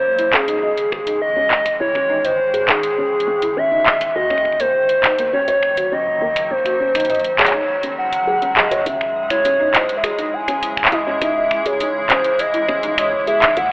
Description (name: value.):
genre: IDM.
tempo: 102 BPM.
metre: 4/4.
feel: straight.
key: C# melodic minor.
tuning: A4 = 440 Hz.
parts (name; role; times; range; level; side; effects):
warbly nostalgic lead; melody; 0.0-13.7 s; G#4 to G#5; -17 LUFS; equal; chorus, tape echo.
granular cloud pad; sustained chords; 0.0-13.7 s; C#3 to E4; -27 LUFS; equal; built-in reverb.
woody FM bass; bass; 0.0-13.7 s; G#1 to D#2; -35 LUFS; equal; tube saturation.
felt-muted upright piano; arpeggios; 0.2-13.5 s; A#3 to D#5; -25 LUFS; equal; digital delay.
booming analog drum machine; drums; 0.2-13.7 s; finger snaps, handclaps, hi-hat; -18 LUFS; equal; studio ambience.
electronic kick drum; drums; 0.3-13.7 s; none; -43 LUFS; equal; none.
pulsing gated texture; texture; 9.2-13.7 s; E4 to D#6; -28 LUFS; equal; chorus, built-in reverb.
room: moderate plate reverb, RT60 3.6 s.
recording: telephone sound.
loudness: -15 LUFS.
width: side -26 dB against mid.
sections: 0.0-8.9 A section; 8.9-13.7 B section.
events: none.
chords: 0.0 C#madd9; 4.2 D#m7; 6.5 G#7sus4; 8.9 C#madd9.